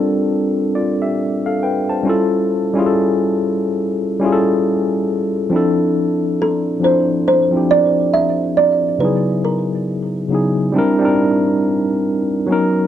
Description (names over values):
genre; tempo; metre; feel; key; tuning
hip hop; 69 BPM; 4/4; swing 62% on 16ths; unclear; A4 = 440 Hz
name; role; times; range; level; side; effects
tine electric piano; accompaniment; 0.0-12.9 s; C#3 to A5; -15 LUFS; left 1 dB; medium stereo tremolo, low-pass filter
kalimba; melody; 6.4-11.1 s; A4 to E5; -16 LUFS; right 3 dB; low-pass filter, tape echo
room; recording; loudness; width
moderate small room reverb, RT60 0.5 s; dark, warm production; -14 LUFS; side -10 dB against mid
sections
0.0-5.5 A section; 5.5-12.9 B section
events
none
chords
0.0 F69; 2.1 A7b13; 5.5 Dm9; 9.0 C#m11; 10.8 C9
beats
0.32 1.19 | 2.06 2.93 3.80 4.67 | 5.54 6.41 7.28 8.15 | 9.02 9.88 10.76 11.62 | 12.49